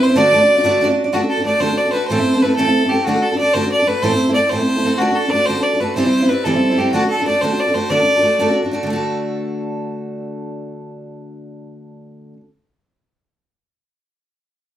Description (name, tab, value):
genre	celtic folk, Celtic jig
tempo	124 BPM (dotted quarters)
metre	6/8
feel	straight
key	D mixolydian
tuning	A4 = 440 Hz
part	bright fiddle	melody	0.0-8.6 s	F#4 to D5	-17 LUFS	equal	none
part	picked steel-string acoustic guitar	accompaniment	0.0-12.5 s	A2 to D5	-17 LUFS	right 1 dB	none
room	wet studio ambience, RT60 0.5 s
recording	band playing live in one room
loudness	-14 LUFS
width	side -11 dB against mid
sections	0.0-1.1 A section; 1.1-8.9 B section; 8.9-10.8 C section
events	none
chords	0.2 D; 2.1 Am; 3.1 D; 4.0 Am; 5.0 D; 6.0 C; 6.9 D